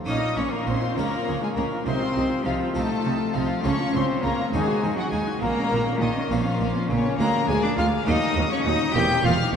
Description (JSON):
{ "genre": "classical, baroque-style concerto movement with solo episodes", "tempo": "68 BPM (dotted quarters)", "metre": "6/8", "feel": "straight", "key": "Bb minor", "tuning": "A4 = 442 Hz", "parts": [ { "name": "harpsichord", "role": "accompaniment", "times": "0.0-9.6 s", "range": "D2 to Ab4", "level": "-34 LUFS", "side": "equal", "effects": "none" }, { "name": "warm chamber cello section", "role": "bass", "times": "0.0-9.3 s", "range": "D2 to Eb3", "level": "-29 LUFS", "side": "right 3 dB", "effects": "none" }, { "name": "rich cello", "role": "melody", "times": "0.1-9.3 s", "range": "Db3 to G4", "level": "-26 LUFS", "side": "left 2 dB", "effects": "none" }, { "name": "rich chamber violin section", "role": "melody", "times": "0.1-9.5 s", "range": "Db5 to G6", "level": "-31 LUFS", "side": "left 4 dB", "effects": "none" }, { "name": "warm chamber violin section", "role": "second line", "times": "0.1-9.5 s", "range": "Db4 to G5", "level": "-30 LUFS", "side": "left 4 dB", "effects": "none" }, { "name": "dark chamber viola section", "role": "accompaniment", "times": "0.1-9.6 s", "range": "Gb3 to Gb4", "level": "-30 LUFS", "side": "right 2 dB", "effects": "none" }, { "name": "rich chamber double bass section", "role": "bass", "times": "0.1-9.6 s", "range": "E1 to Eb2", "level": "-29 LUFS", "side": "right 3 dB", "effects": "none" } ], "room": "wet cathedral reverb, RT60 5.2 s", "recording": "dark, warm production", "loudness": "-21 LUFS", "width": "side -7 dB against mid", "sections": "0.1-9.6 A section", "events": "none", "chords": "0.1 Bbm; 1.0 Bbm/Db; 1.9 F7/C; 3.6 Bbm/Db; 4.5 Ebm; 5.4 Bbm; 7.2 Bb7/D; 8.1 Ebm; 9.0 C7/E" }